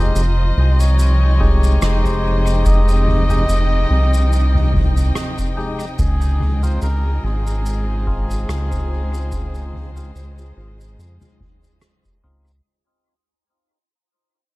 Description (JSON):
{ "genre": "ambient dub", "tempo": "72 BPM", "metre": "4/4", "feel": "swing 55% on 16ths", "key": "unclear", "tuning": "A4 = 440 Hz", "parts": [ { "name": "trumpet with cup mute", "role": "melody", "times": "0.0-11.8 s", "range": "Ab4 to Eb5", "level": "-28 LUFS", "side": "equal", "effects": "dub echo" }, { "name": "dark chamber string section", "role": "sustained chords", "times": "0.0-12.7 s", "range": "C3 to G5", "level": "-27 LUFS", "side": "equal", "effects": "none" }, { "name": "percussive tonewheel organ", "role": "stabs", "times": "0.0-12.5 s", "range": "Ab3 to G4", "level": "-28 LUFS", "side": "left 2 dB", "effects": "overdrive, dub echo" }, { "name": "round analog bass", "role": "bass", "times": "0.0-12.6 s", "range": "F1 to F2", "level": "-16 LUFS", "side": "equal", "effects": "none" }, { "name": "soft-mallet drum kit", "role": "drums", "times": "0.2-12.6 s", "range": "rim click, shaker, toms", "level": "-27 LUFS", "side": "left 1 dB", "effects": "dub echo" }, { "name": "electronic kick drum", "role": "drums", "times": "1.4-12.2 s", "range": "none", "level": "-21 LUFS", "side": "equal", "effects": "none" } ], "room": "little or no reverb", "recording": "dark, warm production", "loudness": "-15 LUFS", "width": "side -20 dB against mid", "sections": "0.0-12.7 A section", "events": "fade-out 3.8-12.7", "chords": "0.0 Fm9; 6.0 Dbmaj9" }